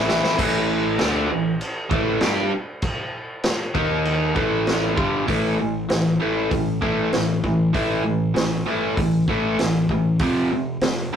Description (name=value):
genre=garage rock duo or trio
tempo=98 BPM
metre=4/4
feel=straight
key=A minor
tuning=A4 = 441 Hz
part: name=biting overdriven guitar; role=riff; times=0.0-11.2 s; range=F2 to G4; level=-20 LUFS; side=equal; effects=none
part: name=fuzz fingered electric bass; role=bass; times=0.0-11.2 s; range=F1 to G2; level=-32 LUFS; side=equal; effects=overdrive
part: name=vintage drum kit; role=drums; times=0.1-11.0 s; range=crash cymbal, hi-hat, kick drum, snare drum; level=-25 LUFS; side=equal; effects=none
room=wet studio reverb, RT60 0.5 s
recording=rough rehearsal-room recording, tube saturation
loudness=-19 LUFS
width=side -8 dB against mid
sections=0.4-5.3 A section; 5.3-11.2 B section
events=drum fill 0.0-0.4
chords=0.4 A5; 3.7 D#5; 4.4 A5; 10.2 F5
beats=| 0.39 1.00 1.61 2.22 | 2.83 3.44 4.06 4.67 | 5.28 5.90 6.51 7.13 | 7.74 8.36 8.97 9.59 | 10.20 10.82